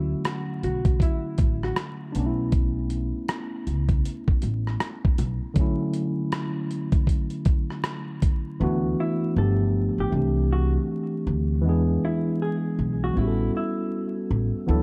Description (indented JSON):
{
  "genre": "lo-fi hip hop",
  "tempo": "79 BPM",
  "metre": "4/4",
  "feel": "swing 62% on 16ths",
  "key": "D major",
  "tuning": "A4 = 440 Hz",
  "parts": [
    { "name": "hollow-body jazz guitar", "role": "melody", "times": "0.0-1.8, 9.0-14.1 s", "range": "E4 to A4", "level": "-35 LUFS", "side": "equal", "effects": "low-pass filter" },
    { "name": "tine electric piano", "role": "accompaniment", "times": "0.0-14.8 s", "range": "D3 to A4", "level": "-30 LUFS", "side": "equal", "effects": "cassette tape, low-pass filter" },
    { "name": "upright bass", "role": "bass", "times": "0.0-14.8 s", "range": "G1 to E2", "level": "-27 LUFS", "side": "equal", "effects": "none" },
    { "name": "dusty soul sampler-style drum kit", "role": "drums", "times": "0.2-8.4 s", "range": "hi-hat, kick drum, rim click", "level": "-25 LUFS", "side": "equal", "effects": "none" }
  ],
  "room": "little or no reverb",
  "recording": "dark, warm production, vinyl crackle",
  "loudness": "-25 LUFS",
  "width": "mono",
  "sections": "0.0-8.6 A section; 8.6-14.8 B section",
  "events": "none",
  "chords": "0.0 Dmaj9; 2.1 B9sus4; 5.6 Dmaj9; 8.6 D69; 9.4 G9; 10.1 C69; 11.6 E7; 13.2 A13",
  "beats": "0.24 1.00 1.76 | 2.52 3.28 4.04 4.80 | 5.56 6.32 7.08 7.84 | 8.60 9.36 10.12 10.88 | 11.64 12.40 13.16 13.92 | 14.68"
}